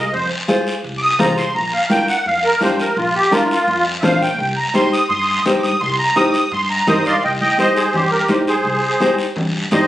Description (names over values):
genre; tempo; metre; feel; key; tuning
latin, cumbia; 169 BPM; 4/4; straight; C minor; A4 = 440 Hz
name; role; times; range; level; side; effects
musette accordion; melody; 0.0-9.9 s; E4 to Eb6; -16 LUFS; right 1 dB; none
flamenco guitar; accompaniment; 0.0-9.9 s; D4 to D5; -18 LUFS; left 1 dB; none
upright bass; bass; 0.0-9.9 s; Bb1 to G2; -26 LUFS; equal; none
congas; percussion; 0.1-9.9 s; none; -23 LUFS; equal; none
guiro; percussion; 0.1-9.9 s; none; -26 LUFS; left 1 dB; none
room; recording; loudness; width
moderate studio reverb, RT60 0.7 s; recorded on a phone in the room, studio reverb; -14 LUFS; side -14 dB against mid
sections
0.0-7.2 A section; 7.2-9.9 B section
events
accordion solo 0.0-7.2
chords
0.0 Fm; 1.6 Bb; 4.4 Cm